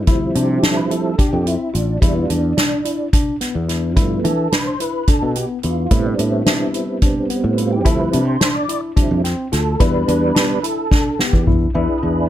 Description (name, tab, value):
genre	progressive instrumental, band music in an uneven meter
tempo	216 BPM (eighths)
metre	7/8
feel	straight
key	unclear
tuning	A4 = 440 Hz
part	sustaining fretless electric bass	bass	0.0-12.3 s	A1 to E3	-19 LUFS	equal	lush chorus
part	mellow tonewheel organ	accompaniment	0.1-12.3 s	F3 to D5	-21 LUFS	right 2 dB	chorus vibrato, slow rotary speaker, plate reverb
part	tine electric piano	arpeggios	0.1-12.2 s	B3 to F4	-23 LUFS	left 3 dB	medium stereo tremolo, digital delay
part	soft-mallet drum kit	drums	0.1-11.6 s	hi-hat, kick drum, snare drum, toms	-17 LUFS	equal	none
room	light reverb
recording	none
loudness	-15 LUFS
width	side -12 dB against mid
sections	0.0-11.7 A section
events	tonewheel organ solo 0.0-11.7; drum fill 10.9-11.7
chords	0.1 Dm11; 2.0 Em7; 4.0 G7; 5.9 Am9; 7.9 Dm11; 9.8 Em7; 11.7 E7